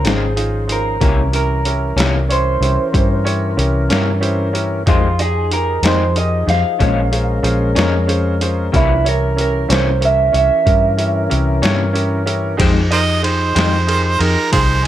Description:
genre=slow blues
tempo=62 BPM (dotted quarters)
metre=12/8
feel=straight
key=F minor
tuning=A4 = 440 Hz
part: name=electric guitar through a small old amp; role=melody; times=0.0-12.2 s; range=E4 to F5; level=-18 LUFS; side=right 3 dB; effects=none
part: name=bright upright piano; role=accompaniment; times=0.0-14.8 s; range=Db4 to Eb5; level=-24 LUFS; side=right 3 dB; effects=none
part: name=electric guitar through a small old amp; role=accompaniment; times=0.0-13.8 s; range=F2 to Db4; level=-23 LUFS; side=left 6 dB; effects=harmonic tremolo
part: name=tonewheel organ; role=sustained chords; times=0.0-14.9 s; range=E3 to C5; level=-23 LUFS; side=left 2 dB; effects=slow rotary speaker
part: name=vintage muted fingered electric bass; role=bass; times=0.0-14.9 s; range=Ab1 to G2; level=-17 LUFS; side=equal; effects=none
part: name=boom bap sampler-style drum kit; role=drums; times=0.0-14.9 s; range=hi-hat, kick drum, ride cymbal, snare drum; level=-19 LUFS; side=equal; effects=none
part: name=mellow harmonica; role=second line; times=12.9-14.9 s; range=F4 to Eb5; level=-17 LUFS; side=right 4 dB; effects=none
room=light reverb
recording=none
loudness=-13 LUFS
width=side -12 dB against mid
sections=0.0-12.6 A section; 12.6-14.9 A section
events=clean electric guitar solo 0.0-12.6; harmonica solo 12.6-14.9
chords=0.0 Dbmaj7; 1.0 C7b9; 4.9 Fm7; 6.8 Bbm7; 8.7 C7b9; 12.6 Fm7

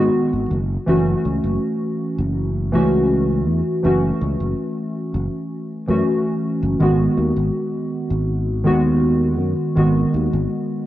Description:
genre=vaporwave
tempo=81 BPM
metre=4/4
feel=straight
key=F# dorian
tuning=A4 = 440 Hz
part: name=warbly lo-fi synth keys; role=accompaniment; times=0.0-10.9 s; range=D#3 to F#4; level=-18 LUFS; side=equal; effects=lush chorus, tape echo
part: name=sustaining fretless electric bass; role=bass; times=0.0-10.5 s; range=F#1 to F#2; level=-21 LUFS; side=equal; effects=lush chorus
room=moderate plate reverb, RT60 3.6 s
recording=worn, warbling old tape, cassette tape, warbly pitch drift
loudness=-17 LUFS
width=side -14 dB against mid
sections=0.0-10.9 A section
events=none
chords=0.0 G#m7; 0.5 F#m7; 6.8 G#m7

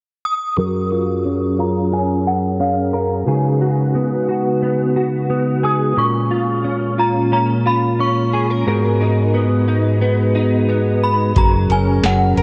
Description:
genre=dream pop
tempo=89 BPM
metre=4/4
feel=straight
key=F# major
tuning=A4 = 443 Hz
part: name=synth chime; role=melody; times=0.3-12.4 s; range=E#5 to D#6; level=-24 LUFS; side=equal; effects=ensemble chorus, phaser, tremolo, low-pass filter, tape echo
part: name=mellow tonewheel organ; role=sustained chords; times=0.6-12.4 s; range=F#2 to B4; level=-22 LUFS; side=equal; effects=slow rotary speaker, low-pass filter
part: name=direct-recorded clean electric guitar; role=arpeggios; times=0.6-12.4 s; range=G#2 to A#4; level=-20 LUFS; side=equal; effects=ensemble chorus, low-pass filter, tape echo
part: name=vintage muted fingered electric bass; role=bass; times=11.4-12.4 s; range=F#1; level=-19 LUFS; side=equal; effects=none
part: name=booming analog drum machine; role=drums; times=11.4-12.4 s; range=hi-hat, kick drum, snare drum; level=-18 LUFS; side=equal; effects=none
part: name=large celesta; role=texture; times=11.7-12.4 s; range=A#4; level=-34 LUFS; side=equal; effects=none
room=moderate huge ambient reverb, RT60 5.3 s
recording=worn, warbling old tape, cassette tape, warbly pitch drift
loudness=-17 LUFS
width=mono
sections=0.6-11.4 A section; 11.4-12.4 B section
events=filter sweep 0.6-11.4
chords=0.0 N.C.; 0.6 F#maj7; 3.3 C#7sus4; 6.0 A#m7; 8.7 G#m9; 11.4 F#

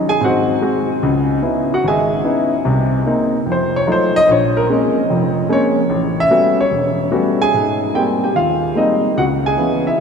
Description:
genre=solo jazz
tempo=148 BPM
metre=4/4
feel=swing 67% on 8ths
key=Ab major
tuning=A4 = 440 Hz
part: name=warm grand piano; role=solo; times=0.0-10.0 s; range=E1 to Ab5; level=-14 LUFS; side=equal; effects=none
room=wet cathedral reverb, RT60 7.0 s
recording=in a vast, echoing space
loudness=-14 LUFS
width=side -6 dB against mid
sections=0.0-7.5 A section; 7.5-10.0 B section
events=grand piano solo 0.0-7.5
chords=0.2 Ab7; 1.0 Dbm9; 2.7 Cm7; 3.5 F7b9; 4.3 Bbm9; 5.9 A13; 7.5 Abmaj9; 9.2 Dbm7

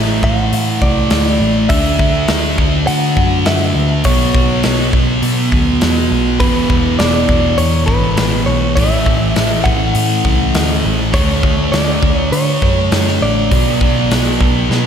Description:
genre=rock, shoegaze and dream pop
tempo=102 BPM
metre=4/4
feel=straight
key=unclear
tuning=A4 = 439 Hz
part: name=direct-recorded clean electric guitar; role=melody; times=0.0-14.9 s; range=B4 to F#5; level=-20 LUFS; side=equal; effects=ping-pong delay
part: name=thick fuzz guitar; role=riff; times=0.0-14.9 s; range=E2 to D4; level=-15 LUFS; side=equal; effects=distortion, wide subtle chorus
part: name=vintage muted picked electric bass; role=bass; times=0.0-14.9 s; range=E1 to D3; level=-18 LUFS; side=equal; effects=none
part: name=big rock drum kit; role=drums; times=0.2-14.8 s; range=hi-hat, kick drum, snare drum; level=-17 LUFS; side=equal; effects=none
room=moderate lush hall reverb, RT60 1.9 s, small room ambience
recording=dreamy mix soaked in reverb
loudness=-11 LUFS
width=side -8 dB against mid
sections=0.0-14.9 A section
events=drum fill 14.7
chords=0.0 Am6; 1.7 Dadd9; 4.0 Bsus2; 6.4 E7(no3); 8.8 A5; 11.1 Dmaj7; 13.5 Bm

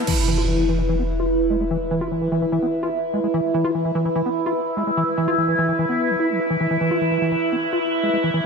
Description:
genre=trance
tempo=147 BPM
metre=4/4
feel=straight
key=unclear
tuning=A4 = 440 Hz
part: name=overtone-sweeping drone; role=sustained chords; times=0.0-8.5 s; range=E4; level=-23 LUFS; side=right 1 dB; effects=chorus, built-in reverb, phaser
part: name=liquid acid bass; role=riff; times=0.0-8.4 s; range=E3 to F4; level=-24 LUFS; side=equal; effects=chorus, auto-pan, dub echo
part: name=airy breathy pad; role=texture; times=0.0-8.5 s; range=E4 to E5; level=-24 LUFS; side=equal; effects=chorus
part: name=impact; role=sound effects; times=0.1-1.7 s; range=none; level=-25 LUFS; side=equal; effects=none
room=moderate lush hall reverb, RT60 1.6 s, digital ambience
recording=none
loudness=-19 LUFS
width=side -5 dB against mid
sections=0.1-8.5 A section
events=impact 0.1-1.7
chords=0.1 E5

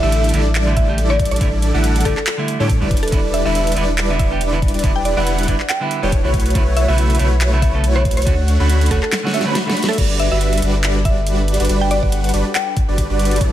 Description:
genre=future bass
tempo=140 BPM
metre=4/4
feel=swing 56% on 16ths, half-time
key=E dorian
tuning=A4 = 440 Hz
part: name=mallet-like synth pluck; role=melody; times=0.0-13.0 s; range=A4 to G5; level=-24 LUFS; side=equal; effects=chorus, sidechain pumping, ping-pong delay
part: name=clean electric guitar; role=accompaniment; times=0.0-9.7 s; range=C#3 to B4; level=-24 LUFS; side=right 3 dB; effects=sidechain pumping, ping-pong delay
part: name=airy dreamy lead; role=arpeggios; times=0.0-13.5 s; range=C#5 to B5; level=-27 LUFS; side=equal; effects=chorus, sidechain pumping, ping-pong delay
part: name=supersaw chords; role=riff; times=0.0-13.5 s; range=G3 to B5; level=-22 LUFS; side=equal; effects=sidechain pumping
part: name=saturated sub bass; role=bass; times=0.0-13.5 s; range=E1 to A2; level=-18 LUFS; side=equal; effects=sidechain pumping
part: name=dubstep drum kit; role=drums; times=0.1-13.5 s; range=crash cymbal, handclaps, hi-hat, ride cymbal, snare drum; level=-24 LUFS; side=right 1 dB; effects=studio reverb
part: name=electronic kick drum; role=drums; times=0.8-13.5 s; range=none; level=-18 LUFS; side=equal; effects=studio reverb
part: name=airy breathy pad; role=sustained chords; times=10.0-13.5 s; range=G3 to B4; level=-30 LUFS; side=equal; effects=chorus, sidechain pumping
room=digital ambience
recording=none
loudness=-14 LUFS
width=side -12 dB against mid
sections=0.0-10.0 A section; 10.0-13.5 A section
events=drop 0.0-10.0, 10.0-13.5; break 9.1-10.0; drum fill 9.1-10.0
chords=0.0 Em7; 6.3 B9sus4; 8.3 Dmaj7; 10.0 Gmaj7

